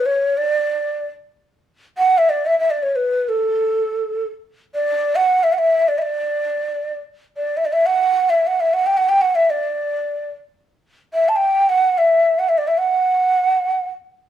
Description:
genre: Arabic maqam ensemble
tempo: free time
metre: none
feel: none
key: D maqam ajam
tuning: A4 = 439 Hz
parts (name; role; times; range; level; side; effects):
- breathy mellow ney; solo; 0.0-13.9 s; A4 to A5; -16 LUFS; right 1 dB; none
room: light reverb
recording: band playing live in one room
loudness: -16 LUFS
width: side -10 dB against mid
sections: 0.0-14.3 A section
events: none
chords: none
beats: free time

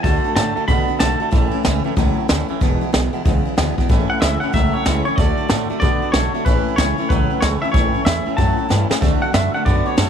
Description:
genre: rockabilly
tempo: 187 BPM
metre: 4/4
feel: swing 64% on 8ths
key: A major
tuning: A4 = 445 Hz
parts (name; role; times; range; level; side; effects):
- twangy electric guitar; melody; 0.0-1.6, 4.1-10.1 s; B4 to B5; -23 LUFS; equal; tape echo
- picked steel-string acoustic guitar; accompaniment; 0.0-10.1 s; E2 to F#4; -24 LUFS; left 15 dB; none
- twangy electric guitar; riff; 0.0-10.1 s; E2 to B3; -24 LUFS; right 15 dB; none
- upright bass; bass; 0.0-10.1 s; E1 to B2; -21 LUFS; equal; none
- jazz brush drum kit; drums; 0.0-10.1 s; hi-hat, kick drum, snare drum; -19 LUFS; equal; none
room: light reverb, small room ambience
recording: 1960s-style stereo with parts hard left and right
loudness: -15 LUFS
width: side -8 dB against mid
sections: 0.0-3.9 A section; 3.9-10.1 A section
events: drum fill 8.7-9.0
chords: 0.0 D; 1.3 A; 2.6 E; 3.9 A; 5.2 D; 6.5 A; 9.0 D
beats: | 0.04 0.36 0.69 1.01 | 1.33 1.65 1.97 2.29 | 2.61 2.94 3.26 3.58 | 3.90 4.22 4.54 4.86 | 5.18 5.50 5.82 6.14 | 6.46 6.78 7.10 7.42 | 7.74 8.06 8.38 8.70 | 9.02 9.34 9.66 9.98

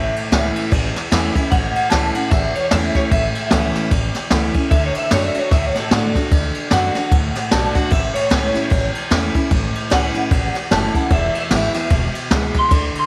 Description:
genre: rockabilly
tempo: 150 BPM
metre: 4/4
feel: swing 59% on 8ths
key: A major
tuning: A4 = 440 Hz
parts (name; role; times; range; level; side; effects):
- electric guitar through a small old amp; melody; 0.0-13.1 s; A4 to C6; -24 LUFS; equal; ensemble chorus, tape echo
- picked steel-string acoustic guitar; accompaniment; 0.0-13.1 s; E2 to F#4; -25 LUFS; equal; none
- upright bass; bass; 0.0-13.0 s; E1 to A2; -24 LUFS; equal; none
- jazz brush drum kit; drums; 0.2-13.0 s; kick drum, ride cymbal, snare drum; -21 LUFS; equal; none
room: small room reverb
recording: none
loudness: -18 LUFS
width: mono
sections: 0.0-13.1 A section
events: none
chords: 0.0 A; 4.7 D; 7.9 A; 11.1 E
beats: 0.31 0.71 1.11 | 1.51 1.91 2.31 2.71 | 3.11 3.51 3.91 4.31 | 4.71 5.11 5.51 5.91 | 6.31 6.71 7.11 7.51 | 7.91 8.31 8.71 9.11 | 9.51 9.91 10.31 10.71 | 11.11 11.51 11.91 12.31 | 12.71

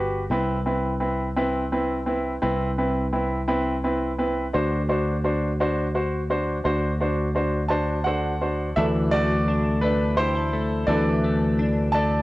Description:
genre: six-eight pop ballad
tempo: 57 BPM (dotted quarters)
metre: 6/8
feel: straight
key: unclear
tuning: A4 = 442 Hz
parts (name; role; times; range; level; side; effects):
- bright concert grand piano; accompaniment; 0.0-12.2 s; E3 to A5; -24 LUFS; equal; cassette tape
- fingered electric bass; bass; 0.0-12.2 s; G1 to D2; -26 LUFS; equal; none
- twelve-string electric guitar; arpeggios; 8.8-12.2 s; E3 to A4; -26 LUFS; left 2 dB; analog chorus, cassette tape
room: light reverb, studio reverb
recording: home recording on cassette, nothing above 10.3 kHz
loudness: -21 LUFS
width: side -18 dB against mid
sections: 0.0-8.8 A section; 8.8-12.2 B section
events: grand piano solo 8.8-12.2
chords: 0.3 Cmaj7; 4.5 D7; 8.8 Dsus2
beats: | 0.31 1.37 | 2.43 3.48 | 4.54 5.60 | 6.66 7.71 | 8.77 9.82 | 10.88 11.93

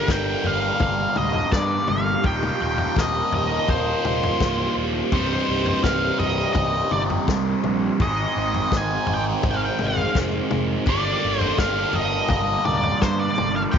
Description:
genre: psychedelic rock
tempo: 84 BPM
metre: 4/4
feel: straight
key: unclear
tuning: A4 = 442 Hz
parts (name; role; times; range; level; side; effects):
- octave-fuzz lead guitar; melody; 0.0-13.8 s; Bb4 to Ab5; -25 LUFS; equal; wah, distortion, tape echo
- phased string machine; sustained chords; 0.0-13.8 s; D3 to C5; -34 LUFS; right 10 dB; ensemble chorus, phaser
- overdriven electric guitar; riff; 0.0-13.8 s; C2 to Ab4; -24 LUFS; right 1 dB; phaser
- fuzz picked electric bass; bass; 0.1-13.8 s; C1 to G2; -28 LUFS; equal; overdrive
- vintage drum kit; drums; 0.1-13.8 s; kick drum, snare drum, toms; -26 LUFS; left 2 dB; none
room: moderate spring reverb, RT60 2.5 s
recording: 1960s-style stereo, nothing above 7.6 kHz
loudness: -19 LUFS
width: side -7 dB against mid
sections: 0.0-13.8 A section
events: none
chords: 0.0 Gm; 2.3 Ebadd9; 5.1 Cm; 8.0 Ab; 10.9 Gm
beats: 0.10 0.82 1.54 | 2.26 2.98 3.69 4.41 | 5.13 5.85 6.57 7.29 | 8.01 8.73 9.45 10.16 | 10.88 11.60 12.32 13.04 | 13.76

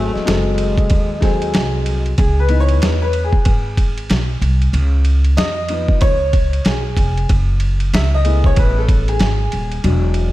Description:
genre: hip hop, jazz-hop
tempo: 94 BPM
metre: 4/4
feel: swing 61% on 16ths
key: C# minor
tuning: A4 = 436 Hz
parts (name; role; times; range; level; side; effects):
- growling tenor saxophone; melody; 0.0-1.8 s; G#3 to A3; -25 LUFS; equal; tape echo
- clear upright piano; accompaniment; 0.0-10.3 s; E3 to E5; -21 LUFS; left 2 dB; lush chorus
- upright bass; bass; 0.0-10.3 s; D#1 to E#2; -16 LUFS; equal; none
- dusty soul sampler-style drum kit; drums; 0.2-10.3 s; hi-hat, kick drum, ride cymbal, snare drum; -18 LUFS; equal; overdrive
room: light reverb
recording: none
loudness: -13 LUFS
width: side -16 dB against mid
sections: 0.0-2.2 A section; 2.2-10.3 B section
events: upright piano solo 2.2-10.3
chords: 0.0 G#7b9; 2.2 C#m7; 4.7 C#7; 7.3 F#m11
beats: 0.27 0.91 1.54 | 2.18 2.82 3.46 4.10 | 4.74 5.38 6.01 6.65 | 7.29 7.93 8.57 9.21 | 9.84

